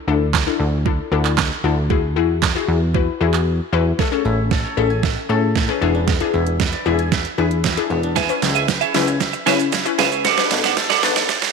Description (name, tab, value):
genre	dance-pop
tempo	115 BPM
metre	4/4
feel	straight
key	A major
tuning	A4 = 445 Hz
part	glassy wavetable pluck	accompaniment	0.1-11.3 s	C#4 to B4	-22 LUFS	left 13 dB	chorus, sidechain pumping
part	plucky analog bass	bass	0.1-11.4 s	E1 to C#3	-21 LUFS	equal	sidechain pumping
part	pop drum kit	drums	0.3-11.5 s	handclaps, hi-hat, kick drum, shaker, snare drum	-20 LUFS	right 6 dB	overdrive
part	guzheng	arpeggios	4.0-11.5 s	A3 to G#5	-26 LUFS	equal	sidechain pumping, slapback echo
part	twelve-string electric guitar	riff	8.2-11.5 s	F#4 to E5	-20 LUFS	right 14 dB	analog chorus
part	tambourine	percussion	8.2-11.4 s	none	-37 LUFS	left 14 dB	none
room	light reverb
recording	1960s-style stereo with parts hard left and right, high-pass filter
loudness	-16 LUFS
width	side -5 dB against mid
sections	0.0-4.0 A section; 4.0-11.5 B section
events	silent gap 3.5-4.0; build-up 4.0-11.5; drum fill 4.0-11.5; filter sweep 4.0-11.5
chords	0.0 Dsus2; 1.9 Eadd9; 4.0 Amaj7; 5.8 E7; 8.2 C#m7; 10.2 Bm7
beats	0.34 0.86 1.38 | 1.90 2.42 2.95 3.47 | 3.99 4.51 5.03 5.55 | 6.08 6.60 7.12 7.64 | 8.16 8.69 9.21 9.73 | 10.25 10.77 11.29